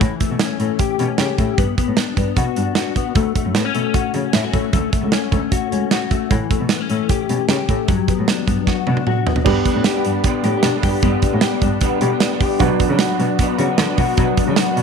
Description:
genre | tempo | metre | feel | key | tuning
jangly indie pop | 152 BPM | 4/4 | straight | unclear | A4 = 440 Hz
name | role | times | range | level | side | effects
mellow electric guitar | arpeggios | 0.0-14.8 s | E3 to G4 | -20 LUFS | left 13 dB | ensemble chorus, tape echo
dark cello | bass | 0.0-14.8 s | C#2 to D3 | -22 LUFS | right 1 dB | none
modern studio drum kit | drums | 0.0-14.8 s | crash cymbal, hi-hat, kick drum, snare drum, toms | -19 LUFS | right 4 dB | none
electric guitar through a small old amp | accompaniment | 9.4-14.8 s | G2 to D4 | -24 LUFS | right 12 dB | ensemble chorus
warm upright piano | accompaniment | 9.4-14.8 s | D4 to B4 | -24 LUFS | right 12 dB | none
room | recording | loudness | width
light reverb | 1960s-style stereo with parts hard left and right | -16 LUFS | side -6 dB against mid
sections
0.0-9.5 A section; 9.5-14.8 B section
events
drum fill 8.7-9.5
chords
0.0 A7; 1.6 Gmaj7 (rootless); 3.2 Dmaj7; 6.3 A7; 7.9 Gmaj7; 9.5 G; 12.6 Bm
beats
| 0.01 0.40 0.80 1.19 | 1.58 1.98 2.37 2.77 | 3.16 3.55 3.95 4.34 | 4.73 5.13 5.52 5.92 | 6.31 6.70 7.10 7.49 | 7.88 8.28 8.67 9.06 | 9.46 9.85 10.24 10.64 | 11.03 11.43 11.82 12.21 | 12.60 13.00 13.39 13.78 | 14.18 14.57

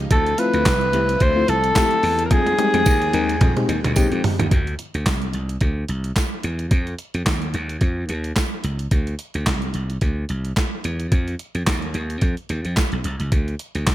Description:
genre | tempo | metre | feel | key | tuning
early-eighties boogie funk | 109 BPM | 4/4 | swing 56% on 16ths | unclear | A4 = 440 Hz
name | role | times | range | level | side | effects
string machine, violins | sustained chords | 0.0-4.5 s | D3 to G5 | -32 LUFS | equal | ensemble chorus
slap bass | bass | 0.0-13.9 s | B1 to F2 | -23 LUFS | equal | none
breathy alto saxophone | melody | 0.1-4.0 s | Ab4 to C5 | -20 LUFS | equal | slapback echo
clean 12-bit digital drum machine | drums | 0.1-13.9 s | handclaps, hi-hat, kick drum, snare drum, toms | -20 LUFS | equal | gated reverb
FM electric piano with tremolo | accompaniment | 0.4-4.4 s | Ab3 to Bb4 | -24 LUFS | left 4 dB | none
tambourine | percussion | 0.7-13.9 s | none | -34 LUFS | right 7 dB | none
room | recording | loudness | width
little or no reverb | none | -18 LUFS | side -14 dB against mid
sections
0.0-4.5 A section; 4.5-13.9 B section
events
drum fill 2.3-4.5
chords
0.1 Dm9; 2.3 Fm9; 4.5 Dsus2; 6.7 C#add9; 8.9 Dsus2; 11.1 F5; 13.3 N.C.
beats
| 0.11 0.66 1.21 1.76 | 2.31 2.86 3.41 3.96 | 4.51 5.06 5.61 6.16 | 6.71 7.26 7.82 8.37 | 8.92 9.47 10.02 10.57 | 11.12 11.67 12.22 12.77 | 13.32 13.87

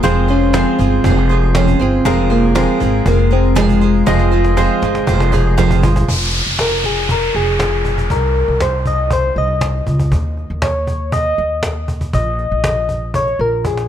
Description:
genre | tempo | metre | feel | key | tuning
piano-driven pop | 119 BPM | 4/4 | straight | F minor | A4 = 437 Hz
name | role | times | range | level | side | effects
soft struck synth lead | melody | 0.0-13.9 s | Ab3 to Eb5 | -18 LUFS | left 1 dB | chorus
clear concert grand piano | accompaniment | 0.0-6.1 s | Ab3 to Eb5 | -20 LUFS | left 1 dB | none
picked steel-string acoustic guitar | riff | 0.0-6.1 s | F3 to C5 | -20 LUFS | right 11 dB | none
upright bass | bass | 0.0-13.9 s | F1 to Eb2 | -17 LUFS | equal | none
cajon | drums | 0.0-13.9 s | none | -21 LUFS | equal | none
downlifter | sound effects | 6.1-10.1 s | none | -22 LUFS | equal | none
room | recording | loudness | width
small room ambience | none | -13 LUFS | side -10 dB against mid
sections
0.0-6.1 A section; 6.1-13.9 B section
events
drum fill 4.1-6.1, 13.6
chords
0.0 Fm; 8.1 Cm7; 10.1 Dbsus2/Eb; 12.1 Eb5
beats
| 0.03 0.54 1.04 1.55 | 2.05 2.56 3.06 3.56 | 4.07 4.57 5.08 5.58 | 6.08 6.59 7.09 7.60 | 8.10 8.61 9.11 9.61 | 10.12 10.62 11.13 11.63 | 12.14 12.64 13.14 13.65

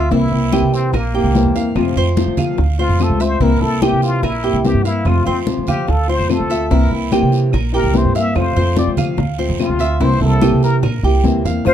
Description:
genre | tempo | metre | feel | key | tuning
latin, Cuban son and guajira | 146 BPM | 4/4 | straight | F major | A4 = 440 Hz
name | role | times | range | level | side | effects
trumpet with plunger mute | melody | 0.0-11.7 s | Bb3 to F5 | -22 LUFS | left 3 dB | none
nylon-string guitar | accompaniment | 0.0-11.7 s | C3 to F4 | -19 LUFS | left 4 dB | none
Cuban tres | arpeggios | 0.0-11.7 s | E4 to F5 | -22 LUFS | right 6 dB | none
upright bass | bass | 0.0-11.7 s | Bb1 to F3 | -17 LUFS | right 1 dB | none
bongos | percussion | 0.1-11.7 s | none | -26 LUFS | left 4 dB | none
congas | percussion | 0.1-11.7 s | none | -23 LUFS | equal | none
guiro | percussion | 0.1-11.7 s | none | -35 LUFS | right 7 dB | none
claves | percussion | 0.5-11.7 s | none | -36 LUFS | right 6 dB | none
breathy bright jazz flute | second line | 11.7 s | C5 | -10 LUFS | left 3 dB | none
room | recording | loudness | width
moderate small room ambience, RT60 0.5 s | dark, warm production | -13 LUFS | side -10 dB against mid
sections
0.0-11.7 A section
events
muted trumpet solo 0.0-11.7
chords
0.1 C7; 1.8 F; 3.4 C7; 5.1 F; 6.7 C7; 8.4 F; 10.0 C7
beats
| 0.12 0.53 0.94 1.35 | 1.76 2.17 2.58 3.00 | 3.41 3.82 4.23 4.64 | 5.05 5.47 5.88 6.29 | 6.71 7.12 7.53 7.94 | 8.36 8.77 9.18 9.59 | 10.01 10.42 10.83 11.24 | 11.65

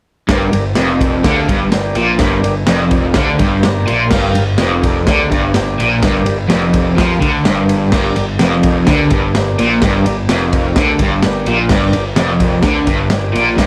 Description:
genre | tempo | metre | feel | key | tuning
garage rock duo or trio | 126 BPM | 4/4 | straight | G minor | A4 = 440 Hz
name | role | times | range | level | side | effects
overdriven combo organ | sustained chords | 0.3-13.7 s | G4 to C6 | -25 LUFS | equal | lush chorus
crunchy overdriven guitar | riff | 0.3-13.7 s | F2 to F3 | -16 LUFS | equal | harmonic tremolo
fuzz picked electric bass | bass | 0.3-13.7 s | F1 to F2 | -23 LUFS | equal | overdrive
crunchy breakbeat drum kit | drums | 0.3-13.7 s | crash cymbal, kick drum, ride cymbal, snare drum | -19 LUFS | equal | none
room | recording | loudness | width
light reverb | none | -14 LUFS | mono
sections
0.3-13.7 A section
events
transistor combo organ fill 2.7-4.1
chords
0.3 Gm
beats
| 0.29 0.77 1.25 1.73 | 2.20 2.68 3.16 3.64 | 4.12 4.60 5.08 5.55 | 6.03 6.51 6.98 7.46 | 7.93 8.41 8.88 9.35 | 9.83 10.30 10.77 11.24 | 11.71 12.18 12.64 13.11 | 13.58

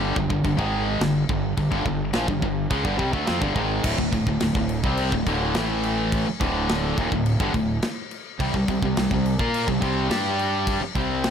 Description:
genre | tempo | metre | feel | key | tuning
heavy metal | 106 BPM | 4/4 | straight | D minor | A4 = 439 Hz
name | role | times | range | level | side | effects
high-gain distorted guitar | riff | 0.0-11.3 s | D2 to Bb4 | -26 LUFS | right 10 dB | distortion
tight distorted guitar | riff | 0.0-11.3 s | D2 to Bb4 | -26 LUFS | left 9 dB | distortion
fuzz fingered electric bass | bass | 0.0-11.3 s | D1 to Bb2 | -28 LUFS | equal | overdrive
tight metal drum kit | drums | 0.2-11.3 s | crash cymbal, kick drum, snare drum | -28 LUFS | equal | none
room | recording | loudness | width
studio reverb | none | -21 LUFS | side -8 dB against mid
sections
0.0-3.8 A section; 3.8-11.3 B section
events
none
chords
0.0 G5; 3.8 D5; 5.6 A5; 6.3 D5; 8.4 C5; 10.1 G5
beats
0.44 1.01 | 1.57 2.14 2.71 3.28 | 3.85 4.41 4.98 5.55 | 6.12 6.69 7.26 7.83 | 8.39 8.96 9.53 10.10 | 10.67 11.23

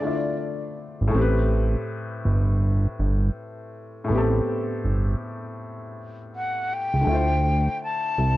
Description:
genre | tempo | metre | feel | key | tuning
lo-fi hip hop | 81 BPM | 4/4 | swing 65% on 16ths | unclear | A4 = 440 Hz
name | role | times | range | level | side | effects
breathy concert flute | melody | 0.0-0.8, 6.4-8.4 s | D5 to A5 | -26 LUFS | left 2 dB | low-pass filter
felt-muted upright piano | accompaniment | 0.0-8.4 s | A2 to D5 | -28 LUFS | left 2 dB | cassette tape, low-pass filter
fat analog bass | bass | 1.0-8.4 s | G1 to D2 | -21 LUFS | right 1 dB | none
room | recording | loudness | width
little or no reverb | cassette tape | -21 LUFS | side -16 dB against mid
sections
0.0-8.4 A section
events
none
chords
0.0 Dm7; 1.1 Am7; 7.1 Dm7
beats
0.39 | 1.13 1.87 2.61 3.35 | 4.10 4.84 5.58 6.32 | 7.06 7.80

